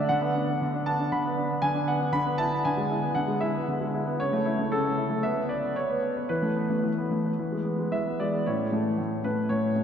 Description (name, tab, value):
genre	classical-period piano sonatina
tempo	109-119 BPM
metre	4/4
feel	rubato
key	A major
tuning	A4 = 439 Hz
part	clear concert grand piano	solo	0.0-9.8 s	A2 to B5	-24 LUFS	equal	none
room	wet cathedral reverb, RT60 4.5 s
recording	dark, warm production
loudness	-25 LUFS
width	side -8 dB against mid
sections	0.0-8.5 A section; 8.5-9.8 B section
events	none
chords	0.1 Bm/D; 2.1 E7/D; 4.2 A/C#; 5.2 N.C.; 6.3 Esus4; 7.4 E; 8.5 A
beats	| 0.10 0.61 1.11 1.62 | 2.13 2.64 3.15 3.67 | 4.18 4.70 5.21 5.74 | 6.29 6.83 7.38 7.92 | 8.46 8.98 9.50